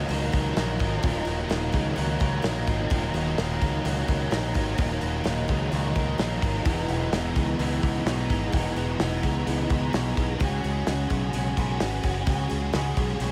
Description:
rock, shoegaze and dream pop; 128 BPM; 4/4; straight; Eb phrygian; A4 = 441 Hz
picked twelve-string acoustic guitar; arpeggios; 0.0-13.3 s; E4 to Cb5; -40 LUFS; equal; lush chorus, slapback echo
biting overdriven guitar; riff; 0.0-13.3 s; Eb2 to Ab4; -34 LUFS; equal; ensemble chorus
overdriven electric guitar; riff; 0.0-13.3 s; Eb2 to Ab4; -32 LUFS; equal; reverse reverb
growling fingered electric bass; bass; 0.0-13.3 s; Eb1 to Db2; -31 LUFS; equal; overdrive
loose indie drum kit; drums; 0.1-13.3 s; hi-hat, kick drum, snare drum; -32 LUFS; equal
light reverb, studio ambience; -26 LUFS; mono
0.0-13.3 A section
0.0 Ebm9; 6.7 Emaj7; 10.4 Db7sus4

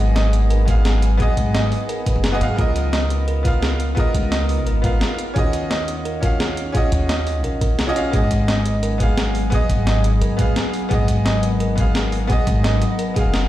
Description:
liquid drum and bass; 173 BPM; 4/4; straight; G# dorian; A4 = 440 Hz
bright baby grand piano; accompaniment; 0.0-13.5 s; B3 to E#5; -24 LUFS; equal; ping-pong delay
glassy FM pad; sustained chords; 0.0-13.5 s; F#3 to A#4; -28 LUFS; left 2 dB; ensemble chorus, built-in reverb, sidechain pumping
upright bass; bass; 0.0-13.5 s; F#1 to G#2; -20 LUFS; equal
thumb-piano-like synth pluck; arpeggios; 0.2-13.4 s; G#4 to D#5; -29 LUFS; right 3 dB; chorus, ping-pong delay
breakbeat sampler-style drum kit; drums; 0.2-13.4 s; hi-hat, snare drum; -26 LUFS; equal; studio reverb
electronic kick drum; drums; 0.7-13.2 s; -19 LUFS; equal; studio reverb
little or no reverb; played on a big sound system in a bare room, stone room reverb; -16 LUFS; side -14 dB against mid
0.0-8.1 A section; 8.1-13.5 A section
drop 0.0-8.1, 8.1-13.5
0.0 G#m7; 2.6 C#13; 5.4 D#m9; 8.1 G#m7

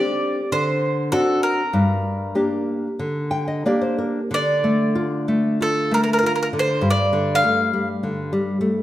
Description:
fado-style ballad; 90-103 BPM; 4/4; rubato; G minor, D minor from 4.3 s; A4 = 440 Hz
bowl-back mandolin; melody; 0.0-7.9 s; A4 to F5; -21 LUFS; equal
nylon-string guitar; accompaniment; 0.0-8.8 s; G2 to G5; -20 LUFS; left 1 dB
wet recital hall reverb, RT60 1.7 s; -18 LUFS; side -13 dB against mid
0.0-4.3 A section; 4.3-8.8 B section
nylon-string guitar fill 3.0-4.3
0.0 D7sus4; 0.5 D7; 1.7 Gm; 4.3 Dm; 6.8 Gsus2

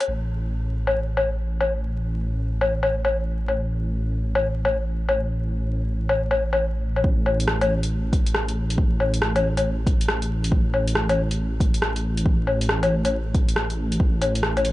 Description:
future garage; 138 BPM; 4/4; swing 64% on 16ths; A4 = 442 Hz
deep house drum kit; drums; 0.0-14.7 s; hi-hat, rim click, woodblock; -24 LUFS; left 2 dB; low-pass filter on hats, low-pass filter on snare, low-pass filter on perc, low-pass filter on room
dark detuned saw bass; bass; 0.1-14.7 s; A1; -24 LUFS; equal; tube saturation, sidechain pumping
electronic kick drum; drums; 7.0-14.1 s; -20 LUFS; equal
little or no reverb; vinyl crackle, nothing above 10.7 kHz; -20 LUFS; side -16 dB against mid
0.1-7.0 A section; 7.0-14.7 B section

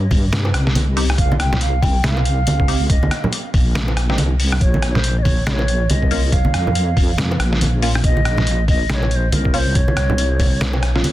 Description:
deep dubstep; 140 BPM; 4/4; swing 60% on 16ths, half-time; A4 = 440 Hz
deep soft wobble bass; bass; 0.0-11.0 s; Bb1 to G2; -18 LUFS; equal; chorus
electronic kick drum; drums; 0.1-10.5 s; -17 LUFS; equal
trip hop sampler-style drum kit; drums; 0.1-11.1 s; hi-hat, rim click, snare drum; -23 LUFS; equal; soft clipping on snare
congas and bongos; percussion; 0.1-11.1 s; -24 LUFS; right 1 dB
filtered dub chord stab; stabs; 1.0-11.0 s; Bb3 to G4; -28 LUFS; left 1 dB; phaser, cassette tape, dub echo
low ney; melody; 1.2-11.0 s; Bb4 to G5; -25 LUFS; right 1 dB; dub echo
little or no reverb; dense, heavily limited modern master; -15 LUFS; side -15 dB against mid
0.0-11.1 A section
0.0 C5; 4.6 Bbm

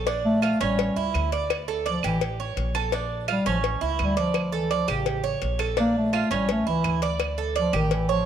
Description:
latin, Cuban son and guajira; 168 BPM; 4/4; straight; D harmonic minor; A4 = 440 Hz
Cuban tres; arpeggios; 0.0-8.3 s; C#4 to D5; -27 LUFS; right 8 dB
upright bass; bass; 0.0-8.2 s; A1 to D2; -30 LUFS; left 1 dB
cowbell; percussion; 0.1-8.1 s; -32 LUFS; left 12 dB
dark bass clarinet; melody; 0.3-8.3 s; C#3 to Bb3; -25 LUFS; left 1 dB
claves; percussion; 0.4-7.9 s; -34 LUFS; right 12 dB
moderate echo chamber reverb, RT60 2.2 s; 1960s-style stereo with parts hard left and right; -22 LUFS; side -9 dB against mid
0.0-8.3 A section
bass clarinet solo 0.0-8.3
0.1 Bbmaj7; 0.8 A7; 1.5 D5; 2.2 A7; 2.9 Bbmaj7; 3.6 A; 4.4 D5; 5.1 A7; 5.8 Bbmaj7; 6.5 A; 7.2 D5

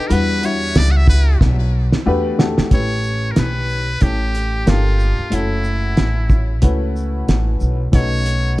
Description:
hip hop, jazz-hop; 92 BPM; 4/4; swing 57% on 16ths; A4 = 441 Hz
trumpet with metal mute; melody; 0.0-8.6 s; E4 to F#5; -24 LUFS; equal; ping-pong delay
warm upright piano; accompaniment; 0.0-8.6 s; G3 to E5; -23 LUFS; left 2 dB
upright bass; bass; 0.1-8.6 s; F#1 to E2; -18 LUFS; equal
cloth-damped thuddy drum kit; drums; 0.1-8.4 s; hi-hat, kick drum, shaker, snare drum; -16 LUFS; equal
little or no reverb; dark, warm production; -14 LUFS; side -18 dB against mid
0.0-2.7 A section; 2.7-8.6 B section
muted trumpet solo 0.0-2.7; drum fill 1.4-2.7
0.1 Em9; 2.1 Em11; 2.7 A9; 4.7 Gm7; 5.3 F#m7; 7.9 B9

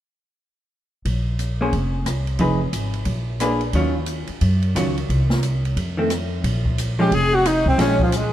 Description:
jazz, small-group swing and bop; 178 BPM; 4/4; swing 63% on 8ths; Bb minor; A4 = 443 Hz
upright bass; bass; 1.1-8.3 s; F1 to Gb2; -21 LUFS; equal
open jazz drum kit; drums; 1.1-8.2 s; hi-hat, kick drum, ride cymbal, rim click, snare drum; -27 LUFS; equal
vintage hollow-body jazz guitar; accompaniment; 1.6-8.0 s; Eb3 to C5; -23 LUFS; equal
clear tenor saxophone; melody; 7.0-8.3 s; F3 to Ab4; -19 LUFS; left 2 dB
clear alto saxophone; second line; 7.0-8.3 s; F3 to Ab4; -24 LUFS; right 4 dB
light reverb; dark, warm production; -18 LUFS; side -12 dB against mid
1.1-6.4 A section; 6.4-8.3 B section
1.1 Bbsus2; 2.4 Fm7b5; 3.1 Bb7b9; 3.7 Ebm9; 5.1 N.C.; 5.8 F7; 6.4 Bbm7

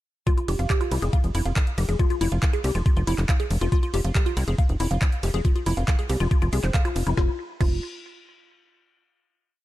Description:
psychedelic trance; 139 BPM; 4/4; straight; F harmonic minor; A4 = 439 Hz
woody wave-folded pluck; riff; 0.3-7.8 s; E4 to F5; -29 LUFS; moving between left 6 dB and right 6 dB; chorus, auto-pan, sidechain pumping, digital delay
drum and bass drum kit; drums; 0.3-7.7 s; crash cymbal, handclaps, hi-hat, ride cymbal, snare drum; -34 LUFS; equal; overdrive
electronic kick drum; drums; 0.3-7.7 s; -21 LUFS; equal; overdrive
tight sequencer bass; bass; 0.5-7.8 s; F1 to C2; -24 LUFS; equal
little or no reverb; dark, warm production, lossy compression artefacts; -21 LUFS; side -15 dB against mid
0.3-7.2 drop; 7.2-8.9 final chord
drop 0.3-7.2
0.3 F5; 7.2 N.C.

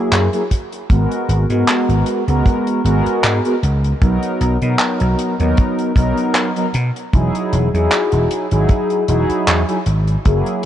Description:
vaporwave; 77 BPM; 4/4; swing 55% on 16ths; A4 = 440 Hz
mellow synth brass; accompaniment; 0.0-10.7 s; F#3 to A#4; -18 LUFS; equal; lush chorus, tape echo
vintage slap bass; bass; 0.1-10.4 s; E1 to B2; -16 LUFS; equal
damped 70s drum kit; drums; 0.1-10.7 s; handclaps, hi-hat; -22 LUFS; equal; studio reverb
kick drum; drums; 0.5-10.4 s; -13 LUFS; equal; studio reverb
light reverb, small room ambience; cassette tape, nothing above 10.6 kHz; -14 LUFS; side -11 dB against mid
0.0-10.7 A section
0.0 F#9; 0.9 G#m9; 4.0 Bmaj7; 7.1 Emaj9

